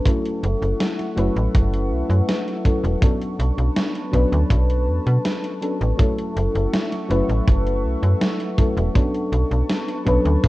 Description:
vaporwave; 81 BPM; 4/4; straight; B minor; A4 = 444 Hz
mellow FM electric piano; accompaniment; 0.0-10.5 s; F#3 to B4; -23 LUFS; left 1 dB; lush chorus, cassette tape, analog delay
warbly tape-like pad; sustained chords; 0.0-10.5 s; A4 to C#6; -34 LUFS; equal; chorus, built-in reverb
gated 80s digital drum machine; drums; 0.1-10.5 s; hi-hat, snare drum; -26 LUFS; equal; gated reverb, gated reverb snare, overdrive
kick drum; drums; 0.1-10.5 s; -18 LUFS; equal
slap-like FM bass; bass; 0.4-10.5 s; E1 to B2; -19 LUFS; equal; tube saturation
light reverb; rough home demo mix, cassette tape; -18 LUFS; side -18 dB against mid
0.0-10.5 A section
0.1 F#m7; 3.0 Bm9; 6.0 F#m7; 9.0 Bm9

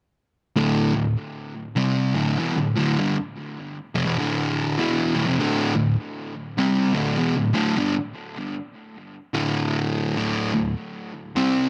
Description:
metal; 100 BPM; 4/4; swing 61% on 8ths; A4 = 440 Hz
fuzz guitar; solo; 0.6-11.7 s; D2 to C4; -24 LUFS; equal; distortion, tape echo
light reverb; dark, warm production; -23 LUFS; mono
0.6-5.4 A section; 5.4-11.7 B section
0.6 D5

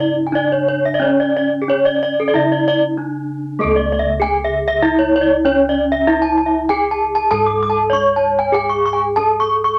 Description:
Balinese gamelan; 95 BPM; 4/4; uneven beats; C# pelog; A4 = 440 Hz
gamelan-type bronze metallophone; melody; 0.0-9.8 s; A3-20c to C#5; -21 LUFS; equal
gamelan-type bronze metallophone; arpeggios; 0.0-9.7 s; G#4-30c to D6+20c; -18 LUFS; equal
gamelan-type bossed gongs; bass; 0.0-9.8 s; C#2 to A4-20c; -28 LUFS; equal
wet club reverb, RT60 0.5 s; -16 LUFS; mono
0.0-3.6 A section; 3.6-9.8 B section
break 2.6-3.6

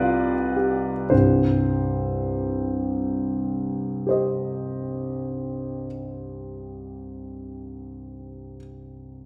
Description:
classical, romantic character piece for solo piano; 34-42 BPM (dotted quarters); 6/8; rubato; C minor; A4 = 440 Hz
clear grand piano; solo; 0.0-9.3 s; C2 to F5; -26 LUFS; equal
wet large studio reverb, RT60 1.2 s; heard from further back in the room; -25 LUFS; mono
0.0-1.1 A section; 1.1-7.1 B section
slowing down 0.0-1.1
0.0 G7/C; 1.1 Cm

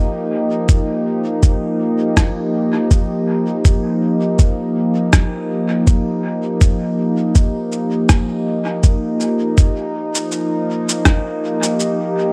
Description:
ambient dub; 81 BPM; 4/4; swing 55% on 16ths; A4 = 439 Hz
warbly tape-like pad; sustained chords; 0.0-12.3 s; F3 to G4; -20 LUFS; equal; chorus, built-in reverb
electronic cabasa and rim click; drums; 0.7-12.0 s; -23 LUFS; equal; overdrive, dub echo
electronic kick drum; drums; 0.7-11.2 s; -15 LUFS; equal; overdrive
light reverb; echo-heavy mix; -17 LUFS; mono
0.0-9.6 A section; 9.6-12.3 B section
0.0 F9sus4

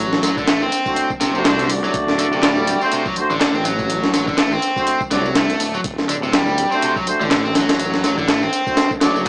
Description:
breakbeat, breaks; 123 BPM; 4/4; swing 57% on 16ths; A4 = 440 Hz
cranked stack guitar; riff; 0.0-9.3 s; C3 to D4; -20 LUFS; equal; overdrive, tube saturation, vintage 12-bit sampler grit, tape echo
detuned saw bass; bass; 0.0-9.3 s; D1 to C2; -25 LUFS; equal
breakbeat sampler-style drum kit; drums; 0.1-9.3 s; hi-hat, kick drum, snare drum; -19 LUFS; equal
electronic tambourine and handclaps; drums; 0.1-9.3 s; -27 LUFS; equal
mellow brass ensemble; stabs; 0.9-9.2 s; A3 to D5; -21 LUFS; equal; vintage 12-bit sampler grit, tape echo
little or no reverb; dry, gritty hardware recording, small speaker sound; -15 LUFS; side -26 dB against mid
0.0-9.3 A section
0.0 D7

